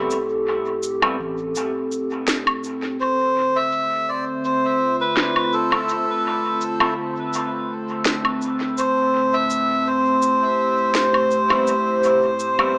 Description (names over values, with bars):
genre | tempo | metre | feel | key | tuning
ambient dub | 83 BPM | 4/4 | swing 54% on 16ths | D dorian | A4 = 440 Hz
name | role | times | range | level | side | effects
warbly tape-like pad | sustained chords | 0.0-12.8 s | A2 to E5 | -26 LUFS | equal | chorus, built-in reverb
electric guitar with an envelope filter | stabs | 0.0-1.2, 5.7-6.9, 11.5-12.7 s | G3 to A4 | -31 LUFS | equal | dub echo
soft dub sub bass | bass | 0.0-1.6 s | A1 | -38 LUFS | equal | none
electronic shaker, woodblock and snare drum | drums | 0.1-12.7 s | none | -26 LUFS | equal | low-pass filter on perc, low-pass filter on snare, low-pass filter on room, dub echo
melodica | melody | 3.0-12.8 s | A4 to E5 | -22 LUFS | equal | dub echo
room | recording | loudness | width
wet spring reverb, RT60 2.1 s | small speaker sound | -21 LUFS | mono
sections
0.0-3.0 A section; 3.0-12.8 B section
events
none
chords
0.0 Am7; 3.0 Dm7; 8.8 Am7